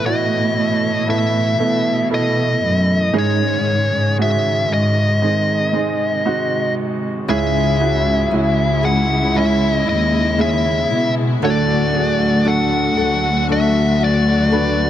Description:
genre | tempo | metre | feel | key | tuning
pop ballad | 58 BPM | 4/4 | straight | C# minor | A4 = 440 Hz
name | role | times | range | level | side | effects
fuzz lead guitar | melody | 0.0-14.9 s | C#5 to F#5 | -19 LUFS | left 1 dB | distortion, analog delay
warm baby grand piano | accompaniment | 0.0-14.9 s | G#2 to B4 | -21 LUFS | right 4 dB | none
warm studio string section | sustained chords | 0.0-14.9 s | B2 to F#4 | -26 LUFS | left 2 dB | none
dark studio cello section | bass | 0.0-14.9 s | C#2 to B2 | -19 LUFS | left 1 dB | none
nylon-string guitar | arpeggios | 7.3-14.9 s | C#3 to A4 | -26 LUFS | left 8 dB | analog delay
room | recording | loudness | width
light reverb, small room ambience | echo-heavy mix | -14 LUFS | side -11 dB against mid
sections
0.0-7.3 A section; 7.3-14.9 B section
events
break 5.2-7.3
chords
0.0 Asus2; 3.1 G#sus4; 5.2 G#; 7.3 C#m; 11.4 D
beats
0.04 1.08 2.11 | 3.15 4.18 5.21 6.25 | 7.28 8.32 9.35 10.39 | 11.42 12.46 13.49 14.53

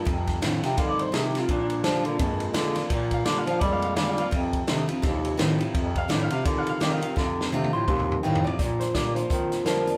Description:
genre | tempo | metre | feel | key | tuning
rockabilly | 169 BPM | 4/4 | swing 59% on 8ths | Bb major | A4 = 440 Hz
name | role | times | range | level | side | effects
picked steel-string acoustic guitar | accompaniment | 0.0-10.0 s | F2 to F4 | -33 LUFS | equal | none
electric guitar through a small old amp | riff | 0.0-10.0 s | F2 to Ab3 | -33 LUFS | equal | none
clear bass clarinet | bass | 0.1-9.9 s | Eb2 to G3 | -31 LUFS | equal | none
vintage drum kit | drums | 0.1-9.9 s | hi-hat, kick drum, ride cymbal, snare drum, toms | -31 LUFS | equal | none
electric guitar through a small old amp | melody | 0.7-10.0 s | D4 to C6 | -32 LUFS | equal | none
room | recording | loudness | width
moderate studio ambience, RT60 0.5 s | band playing live in one room | -25 LUFS | mono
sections
0.0-8.6 A section; 8.6-10.0 B section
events
drum fill 7.2-8.6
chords
0.1 F7; 1.5 Bb; 4.3 F7; 8.6 Bb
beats
| 0.06 0.42 0.77 1.13 | 1.48 1.84 2.19 2.55 | 2.90 3.26 3.61 3.97 | 4.32 4.68 5.03 5.39 | 5.74 6.10 6.45 6.81 | 7.16 7.52 7.87 8.23 | 8.58 8.94 9.29 9.65

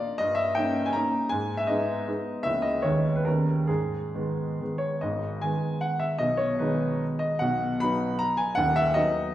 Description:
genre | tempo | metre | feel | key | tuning
classical, romantic triple-time dance for piano with dotted rhythms | 126-172 BPM | 3/4 | rubato | G# minor | A4 = 439 Hz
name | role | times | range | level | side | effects
clear baby grand piano | solo | 0.0-9.3 s | D#1 to B5 | -24 LUFS | equal | none
room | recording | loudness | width
wet recital hall reverb, RT60 1.6 s | heard from further back in the room | -24 LUFS | side -13 dB against mid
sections
0.0-5.0 A section; 5.0-9.3 B section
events
none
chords
0.2 D#7/G; 1.3 G#m; 2.5 A#dim/C#; 2.8 G#m/D#; 3.3 D#7; 3.7 G#m; 6.2 G#m/B; 7.4 B; 8.6 B/D#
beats
| 0.20 0.58 0.97 | 1.32 1.69 2.08 | 2.45 2.84 3.26 | 3.69 4.14 4.61 | 5.03 5.43 5.84 | 6.21 6.61 7.02 | 7.40 7.80 8.21 | 8.59 8.98

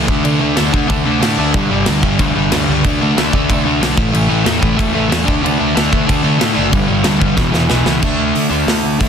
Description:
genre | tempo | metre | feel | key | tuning
punk rock | 185 BPM | 4/4 | straight | unclear | A4 = 440 Hz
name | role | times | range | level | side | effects
crunchy overdriven guitar | riff | 0.0-9.1 s | E2 to D4 | -14 LUFS | equal | none
growling picked electric bass | bass | 0.0-9.1 s | E1 to D3 | -21 LUFS | equal | overdrive
big rock drum kit | drums | 0.1-9.1 s | crash cymbal, hi-hat, kick drum, snare drum | -17 LUFS | equal | none
room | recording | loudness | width
light reverb | dense, heavily limited modern master | -12 LUFS | side -7 dB against mid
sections
0.0-8.0 A section; 8.0-9.1 B section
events
drum fill 7.4-8.0; half time 8.0-9.1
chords
0.1 D5; 1.5 G5; 2.8 D5; 4.0 A5; 5.3 D5; 6.7 G5; 7.4 E5; 8.0 D5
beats
| 0.24 0.57 0.89 1.21 | 1.54 1.86 2.18 2.51 | 2.83 3.16 3.48 3.81 | 4.13 4.45 4.78 5.10 | 5.43 5.75 6.08 6.40 | 6.73 7.05 7.38 7.70 | 8.03 8.35 8.68 9.01

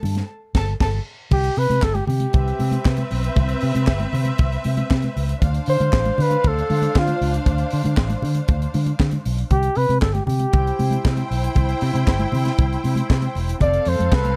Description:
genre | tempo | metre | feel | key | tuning
disco | 117 BPM | 4/4 | straight | unclear | A4 = 440 Hz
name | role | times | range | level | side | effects
clear studio string section | second line | 0.0-14.4 s | C4 to A5 | -30 LUFS | equal | none
fingered electric bass | bass | 0.0-14.4 s | E1 to D3 | -24 LUFS | equal | none
congas | percussion | 0.0-14.4 s | none | -31 LUFS | equal | none
tight funk drum kit | drums | 0.1-14.4 s | crash cymbal, handclaps, hi-hat, kick drum, snare drum | -24 LUFS | equal | none
breathy flugelhorn | melody | 1.3-14.4 s | F4 to D5 | -24 LUFS | equal | none
room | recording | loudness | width
little or no reverb | dark, warm production | -20 LUFS | mono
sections
0.0-1.3 A section; 1.3-14.4 B section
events
band accent 0.3-1.3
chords
0.0 Gsus2; 1.3 Cmaj7; 5.4 Dm7; 9.5 C; 13.6 F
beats
0.29 0.80 | 1.32 1.83 2.34 2.85 | 3.37 3.88 4.39 4.90 | 5.41 5.92 6.44 6.95 | 7.46 7.97 8.48 9.00 | 9.51 10.02 10.53 11.04 | 11.56 12.07 12.58 13.09 | 13.61 14.12

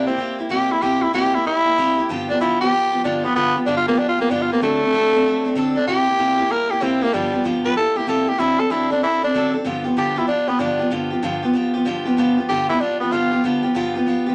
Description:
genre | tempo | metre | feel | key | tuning
rock | 190 BPM | 4/4 | swing 64% on 8ths | G mixolydian | A4 = 440 Hz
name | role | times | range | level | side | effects
growling tenor saxophone | melody | 0.0-13.4 s | G3 to B4 | -21 LUFS | equal | none
picked steel-string acoustic guitar | accompaniment | 0.0-14.3 s | G2 to A4 | -23 LUFS | equal | none
room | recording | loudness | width
wet club reverb, RT60 0.5 s | none | -19 LUFS | mono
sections
0.0-9.7 A section; 9.7-14.3 A section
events
none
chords
0.0 C7; 2.1 G7; 4.6 D7; 5.9 C7; 7.1 G7; 7.8 C7; 8.4 D7; 9.7 G7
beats
0.19 0.51 | 0.82 1.14 1.46 1.77 | 2.09 2.40 2.72 3.04 | 3.35 3.67 3.98 4.30 | 4.61 4.93 5.24 5.56 | 5.87 6.19 6.50 6.82 | 7.13 7.45 7.76 8.08 | 8.39 8.71 9.02 9.34 | 9.65 9.97 10.28 10.60 | 10.91 11.23 11.54 11.86 | 12.18 12.49 12.81 13.12 | 13.44 13.76 14.07

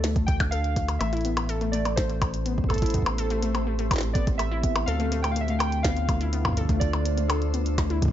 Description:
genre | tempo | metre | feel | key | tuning
IDM | 124 BPM | 4/4 | straight | A minor | A4 = 440 Hz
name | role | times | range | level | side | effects
warbly dusty pluck | arpeggios | 0.0-8.1 s | A3 to A4 | -31 LUFS | left 4 dB | chorus, tape echo
rubbery square bass | bass | 0.0-8.1 s | A1 to D2 | -27 LUFS | right 1 dB | none
glitchy drum kit | drums | 0.0-8.1 s | hi-hat, percussion blips, snare drum | -30 LUFS | left 1 dB | studio ambience
electronic kick drum | drums | 0.2-8.1 s | none | -26 LUFS | equal | studio ambience
warbly lo-fi synth keys | melody | 0.3-7.7 s | A4 to G5 | -32 LUFS | right 2 dB | chorus, vintage 12-bit sampler grit, tape echo
glassy FM pad | sustained chords | 2.2-8.1 s | A2 to C5 | -34 LUFS | left 2 dB | ensemble chorus, built-in reverb
room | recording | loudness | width
digital ambience | nothing above 7.7 kHz | -23 LUFS | side -11 dB against mid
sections
0.0-8.1 A section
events
none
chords
0.0 Dm; 1.0 Am7; 4.9 Dm7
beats
0.04 0.52 | 1.01 1.49 1.97 2.46 | 2.94 3.43 3.91 4.39 | 4.88 5.36 5.84 6.33 | 6.81 7.30 7.78

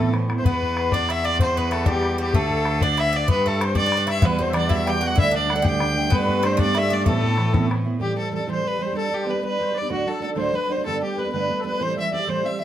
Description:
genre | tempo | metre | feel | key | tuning
celtic folk, Celtic jig | 127 BPM (dotted quarters) | 6/8 | straight | A dorian | A4 = 444 Hz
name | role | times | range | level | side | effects
rich fiddle | melody | 0.0-12.6 s | F#4 to G5 | -24 LUFS | left 1 dB | slapback echo
Irish bouzouki | second line | 0.0-7.7 s | G3 to A4 | -31 LUFS | right 5 dB | none
musette accordion | second line | 0.0-12.6 s | F#4 to G5 | -30 LUFS | left 6 dB | none
fingerpicked twelve-string acoustic guitar | accompaniment | 0.0-0.4, 4.2-12.6 s | D2 to G4 | -25 LUFS | right 5 dB | none
rich cello | bass | 0.0-8.0 s | D2 to A2 | -24 LUFS | equal | none
bodhran | percussion | 0.1-7.8 s | none | -22 LUFS | left 2 dB | none
room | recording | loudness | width
moderate small room reverb, RT60 0.5 s | none | -19 LUFS | side -11 dB against mid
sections
0.4-8.0 A section; 8.0-12.6 B section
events
none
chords
0.4 E5; 2.3 D5; 3.3 G5; 4.2 Emadd9; 5.2 Dsus4; 6.1 Gadd9; 7.1 Amadd9; 8.0 Am7; 9.0 G; 9.9 D; 10.8 Gadd9; 11.8 Am7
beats
| 0.45 0.92 | 1.40 1.87 | 2.34 2.81 | 3.29 3.76 | 4.23 4.70 | 5.17 5.65 | 6.12 6.59 | 7.06 7.54 | 8.01 8.48 | 8.95 9.43 | 9.90 10.37 | 10.85 11.32 | 11.79 12.27

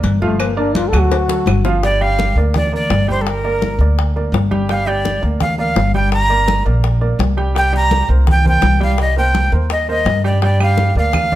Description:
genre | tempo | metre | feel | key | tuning
Afro-Cuban jazz | 168 BPM | 4/4 | straight | G minor | A4 = 440 Hz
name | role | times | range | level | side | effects
warm baby grand piano | accompaniment | 0.0-11.4 s | F3 to G5 | -23 LUFS | right 4 dB | none
upright bass | bass | 0.0-11.4 s | G1 to G2 | -16 LUFS | equal | none
congas | percussion | 0.0-11.4 s | none | -21 LUFS | left 2 dB | none
cowbell and bongos | percussion | 0.0-11.3 s | none | -24 LUFS | left 7 dB | none
breathy trombone | second line | 0.2-1.7 s | A3 to A4 | -19 LUFS | left 3 dB | none
claves | percussion | 0.4-1.7, 10.6-11.3 s | none | -29 LUFS | right 6 dB | none
breathy bright jazz flute | melody | 1.8-11.4 s | A4 to Bb5 | -18 LUFS | right 1 dB | none
room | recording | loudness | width
light reverb | none | -13 LUFS | side -14 dB against mid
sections
0.0-1.8 A section; 1.8-11.4 B section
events
trombone solo 0.0-1.8; drum fill 1.1-1.8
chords
0.0 Gm7; 1.1 D; 1.8 Gm; 7.6 Cm7; 10.4 Gm7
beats
0.04 | 0.40 0.76 1.12 1.47 | 1.83 2.19 2.55 2.90 | 3.26 3.62 3.98 4.34 | 4.70 5.05 5.41 5.77 | 6.13 6.49 6.84 7.20 | 7.56 7.92 8.27 8.63 | 8.99 9.35 9.71 10.06 | 10.42 10.78 11.14

